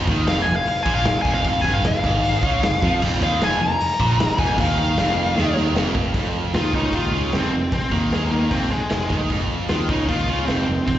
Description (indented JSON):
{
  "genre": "hard rock",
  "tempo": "153 BPM",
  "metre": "4/4",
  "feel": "straight",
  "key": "F minor",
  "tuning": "A4 = 440 Hz",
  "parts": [
    { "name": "distorted electric guitar", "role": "riff", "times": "0.0-11.0 s", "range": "F2 to F3", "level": "-27 LUFS", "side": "right 1 dB", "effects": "overdrive, slapback echo" },
    { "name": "high-gain distorted guitar", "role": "riff", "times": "0.0-11.0 s", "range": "F2 to F3", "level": "-28 LUFS", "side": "right 2 dB", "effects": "distortion, slapback echo" },
    { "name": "picked electric bass", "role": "bass", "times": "0.0-11.0 s", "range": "F1 to F2", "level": "-24 LUFS", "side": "equal", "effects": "none" },
    { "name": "raw garage drum kit", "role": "drums", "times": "0.1-11.0 s", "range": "crash cymbal, hi-hat, kick drum, snare drum", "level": "-24 LUFS", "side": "equal", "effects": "none" },
    { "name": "bluesy overdriven lead guitar", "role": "melody", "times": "0.3-11.0 s", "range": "Ab3 to Bb5", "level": "-22 LUFS", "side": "left 1 dB", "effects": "distortion, slapback echo" }
  ],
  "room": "small room reverb",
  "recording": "live gig heard through the venue's PA, recital hall reverb, nothing above 7.8 kHz",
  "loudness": "-18 LUFS",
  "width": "side -12 dB against mid",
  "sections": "0.0-6.2 A section; 6.2-11.0 B section",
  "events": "lead electric guitar solo 0.0-6.2; drum fill 5.4-6.2",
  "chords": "0.0 Fm; 6.2 F5"
}